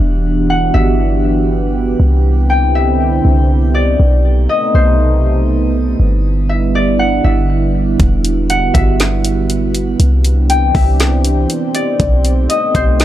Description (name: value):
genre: hip hop, atmospheric cloud-rap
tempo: 120 BPM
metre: 4/4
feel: half-time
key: E minor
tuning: A4 = 440 Hz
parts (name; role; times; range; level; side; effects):
- concert harp; melody; 0.0-13.0 s; C5 to G5; -18 LUFS; left 3 dB; low-pass filter, analog delay
- dark analog pad; sustained chords; 0.0-13.0 s; C3 to G4; -17 LUFS; right 3 dB; chorus, sidechain pumping
- clean 808-style bass; bass; 0.0-13.0 s; E1 to C2; -13 LUFS; equal; transformer saturation
- smooth R&B drum kit; drums; 8.0-13.0 s; hi-hat, kick drum, snare drum; -16 LUFS; equal; none
room: little or no reverb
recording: dry, gritty hardware recording, transformer saturation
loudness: -11 LUFS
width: side -12 dB against mid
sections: 0.0-13.0 A section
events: none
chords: 0.0 Em9; 2.0 Cmaj9; 4.0 B7b9b13; 6.0 G6; 8.0 Em9; 10.0 Cmaj9; 12.0 B7b9b13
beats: | 0.00 0.50 1.00 1.50 | 2.00 2.50 3.00 3.50 | 4.00 4.50 5.00 5.50 | 6.00 6.50 7.00 7.50 | 8.00 8.50 9.00 9.50 | 10.00 10.50 11.00 11.50 | 12.00 12.50 13.00